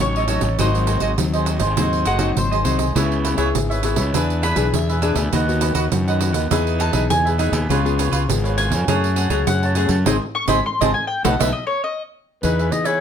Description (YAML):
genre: samba and choro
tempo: 101 BPM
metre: 4/4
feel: straight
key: C# minor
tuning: A4 = 441 Hz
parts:
  - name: mandolin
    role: second line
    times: 0.0-12.0 s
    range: B#4 to C#6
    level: -23 LUFS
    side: left 1 dB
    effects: none
  - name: nylon-string guitar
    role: accompaniment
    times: 0.0-13.0 s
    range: G#2 to G#4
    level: -24 LUFS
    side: left 6 dB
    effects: none
  - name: fuzz fingered electric bass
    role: bass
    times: 0.0-12.7 s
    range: F#1 to F#2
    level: -21 LUFS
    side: equal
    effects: overdrive
  - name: cavaquinho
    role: accompaniment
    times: 0.2-13.0 s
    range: D4 to A5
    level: -23 LUFS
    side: right 4 dB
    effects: none
  - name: pandeiro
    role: percussion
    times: 0.2-13.0 s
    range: none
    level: -25 LUFS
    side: right 6 dB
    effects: none
  - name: mellow clarinet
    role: melody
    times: 12.4-13.0 s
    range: B4 to D#5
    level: -21 LUFS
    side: left 3 dB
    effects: none
room: moderate studio reverb, RT60 0.7 s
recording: none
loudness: -17 LUFS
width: side -8 dB against mid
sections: 0.0-12.4 A section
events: mandolin solo 0.0-12.4; band accent 10.1-12.4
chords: 0.0 D#m7b5/A; 0.6 G#7; 3.0 C#m7; 4.1 E7; 5.3 B/D#; 6.5 Emaj7; 7.7 C#7; 8.9 F#madd9; 10.1 G#; 11.3 B7; 12.4 Emaj7